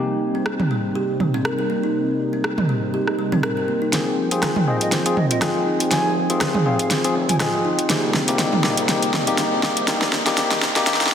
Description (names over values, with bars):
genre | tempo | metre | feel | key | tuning
afro house | 121 BPM | 4/4 | swing 55% on 16ths | F minor | A4 = 440 Hz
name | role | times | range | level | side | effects
warm analog pad | sustained chords | 0.0-11.1 s | C3 to G5 | -27 LUFS | right 2 dB | chorus
bright tine electric piano | stabs | 0.0-11.1 s | C3 to Ab4 | -24 LUFS | left 3 dB | low-pass filter, tape echo
kalimba | arpeggios | 0.3-11.1 s | G3 to Eb5 | -25 LUFS | equal | low-pass filter, tape echo
deep house drum kit | drums | 0.5-11.1 s | hi-hat, rim click, snare drum, toms | -21 LUFS | right 1 dB | overdrive, studio reverb
smooth synth bass | bass | 3.9-10.9 s | F1 to C2 | -33 LUFS | equal | none
bansuri | melody | 4.7-7.5 s | Eb5 to Ab5 | -29 LUFS | equal | tape echo
room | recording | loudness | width
wet lush hall reverb, RT60 1.9 s | dense, heavily limited modern master, high-pass filter | -18 LUFS | side -8 dB against mid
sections
0.0-3.9 A section; 3.9-11.1 B section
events
filter sweep on analog synth pad 0.0-3.9; build-up 3.9-11.1; drum fill 3.9-11.1; filter sweep 3.9-11.1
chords
0.0 Cm7; 3.9 Fm; 7.9 Cm7